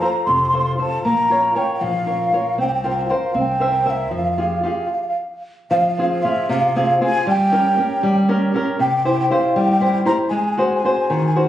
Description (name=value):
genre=italian folk, Italian serenade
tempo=78 BPM (dotted quarters)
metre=6/8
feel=rubato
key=F harmonic minor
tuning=A4 = 442 Hz
part: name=mellow bansuri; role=melody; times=0.0-11.3 s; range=E5 to C6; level=-19 LUFS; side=equal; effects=none
part: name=flamenco guitar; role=accompaniment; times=0.0-11.5 s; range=C3 to E5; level=-19 LUFS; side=equal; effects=none
part: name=upright bass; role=bass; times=0.3-4.6 s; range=F1 to F2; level=-29 LUFS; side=equal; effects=none
room=moderate recital hall reverb, RT60 1.3 s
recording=recorded on a phone in the room, club reverb, compression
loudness=-16 LUFS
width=side -12 dB against mid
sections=0.0-5.7 A section; 5.7-11.5 A section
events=stop 4.9-5.7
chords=0.0 F; 1.1 Bbm; 2.6 C7sus4; 3.4 C7; 4.1 Fmadd9; 5.7 Fm; 7.3 Gdim; 8.8 C; 10.3 Ab7